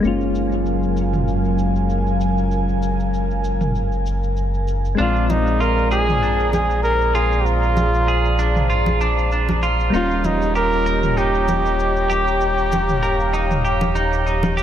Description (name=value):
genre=sunset chillout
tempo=97 BPM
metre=4/4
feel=swing 55% on 16ths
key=unclear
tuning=A4 = 439 Hz
part: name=soft electric-piano-like synth keys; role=accompaniment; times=0.0-14.6 s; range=G3 to D5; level=-26 LUFS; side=moving between left 5 dB and right 5 dB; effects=chorus, auto-pan, low-pass filter, shimmer reverb, dub echo
part: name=airy breathy pad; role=sustained chords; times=0.0-14.6 s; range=Gb3 to Bb5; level=-25 LUFS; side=equal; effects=chorus, shimmer reverb
part: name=round analog bass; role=bass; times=0.0-14.6 s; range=Eb1 to Bb1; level=-21 LUFS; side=equal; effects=tube saturation
part: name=electronic shaker and toms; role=drums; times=0.0-14.6 s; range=none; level=-28 LUFS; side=right 1 dB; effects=low-pass filter on perc, low-pass filter on toms
part: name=clear flugelhorn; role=melody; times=5.0-14.3 s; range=Eb4 to Bb4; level=-21 LUFS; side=equal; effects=shimmer reverb, analog delay
part: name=semi-hollow electric guitar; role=arpeggios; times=5.0-14.6 s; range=D4 to Bb4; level=-24 LUFS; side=right 2 dB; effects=shimmer reverb, dub echo
part: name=congas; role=percussion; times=5.3-14.5 s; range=none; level=-26 LUFS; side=equal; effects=analog delay
room=moderate echo chamber reverb, RT60 2.2 s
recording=echo-heavy mix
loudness=-17 LUFS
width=side -10 dB against mid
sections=0.0-14.6 A section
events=filter sweep on synth keys 0.0-14.6; filter sweep on analog synth pad 0.0-14.6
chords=0.0 Gbmaj9; 5.0 Bb9; 9.9 Eb7